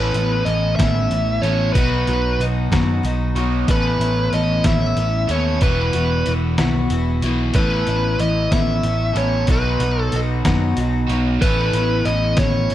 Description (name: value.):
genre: folk rock and heartland rock.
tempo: 62 BPM (dotted quarters).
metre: 6/8.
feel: straight.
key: A lydian.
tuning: A4 = 438 Hz.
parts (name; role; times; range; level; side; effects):
bluesy overdriven lead guitar; melody; 0.0-12.7 s; B4 to E5; -22 LUFS; right 1 dB; distortion.
picked twelve-string acoustic guitar; accompaniment; 0.0-12.7 s; E2 to F#4; -24 LUFS; left 4 dB; none.
crunchy overdriven guitar; riff; 0.0-12.7 s; E2 to A4; -26 LUFS; right 1 dB; phaser.
picked electric bass; bass; 0.0-12.7 s; E1 to F#2; -21 LUFS; equal; none.
trip hop sampler-style drum kit; drums; 0.1-12.7 s; hi-hat, kick drum, snare drum; -21 LUFS; equal; none.
room: light reverb.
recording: dark, warm production.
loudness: -16 LUFS.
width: side -12 dB against mid.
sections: 0.0-12.7 A section.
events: none.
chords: 0.0 Aadd9; 1.8 B; 3.7 Aadd9; 5.6 Esus2; 7.5 Aadd9; 9.5 B; 11.4 Aadd9.